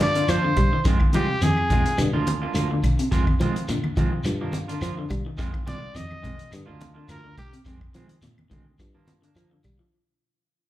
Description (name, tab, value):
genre	afrobeat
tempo	106 BPM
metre	4/4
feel	swing 54% on 16ths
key	unclear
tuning	A4 = 439 Hz
part	growling trumpet	melody	0.0-2.0, 5.7-7.5 s	G4 to Eb5	-27 LUFS	equal	slapback echo
part	electric guitar through a small old amp	arpeggios	0.0-9.9 s	C3 to F3	-30 LUFS	left 4 dB	slapback echo
part	electric guitar at the edge of break-up	stabs	0.0-9.7 s	Eb3 to F4	-32 LUFS	right 6 dB	slapback echo
part	fingered electric bass	bass	0.0-9.8 s	C2 to G3	-27 LUFS	equal	none
part	warm soul drum kit	drums	0.0-9.8 s	hi-hat, kick drum, snare drum	-25 LUFS	equal	none
part	congas	percussion	0.0-9.8 s	none	-29 LUFS	equal	none
part	shekere	percussion	0.0-9.8 s	none	-34 LUFS	equal	none
part	claves	percussion	0.3-9.8 s	none	-44 LUFS	left 2 dB	none
room	light reverb, small room ambience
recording	live gig heard through the venue's PA, club reverb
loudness	-20 LUFS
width	side -14 dB against mid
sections	0.0-9.9 A section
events	fade-out 0.0-9.9; trumpet solo 0.0-9.9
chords	0.0 Gm7; 0.9 Fm7; 2.0 Gm7; 3.1 Fm7; 4.3 Gm7; 5.4 Fm7; 6.5 Gm7; 7.7 Fm7; 8.8 Gm7